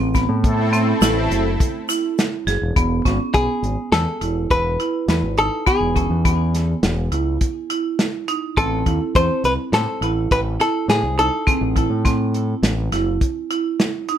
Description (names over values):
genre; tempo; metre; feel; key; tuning
progressive instrumental, band music in an uneven meter; 103 BPM; 5/4; straight; E major; A4 = 440 Hz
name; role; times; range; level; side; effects
growling fingered electric bass; bass; 0.0-13.2 s; E1 to A2; -22 LUFS; equal; overdrive
marimba with hard mallets; arpeggios; 0.1-14.2 s; B3 to G#4; -23 LUFS; right 4 dB; none
warm soul drum kit; drums; 0.1-14.2 s; hi-hat, kick drum, snare drum; -20 LUFS; equal; none
tube shaker; percussion; 0.1-2.3 s; none; -33 LUFS; left 6 dB; none
warm analog pad; accompaniment; 0.4-1.4 s; A3 to A4; -22 LUFS; equal; chorus
archtop guitar, miked and amplified; melody; 3.3-12.0 s; G#4 to C5; -21 LUFS; left 2 dB; ping-pong delay
room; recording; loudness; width
light reverb; none; -17 LUFS; side -10 dB against mid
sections
0.0-2.8 A section; 2.8-14.2 B section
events
none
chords
0.0 Am; 2.8 E; 8.6 Am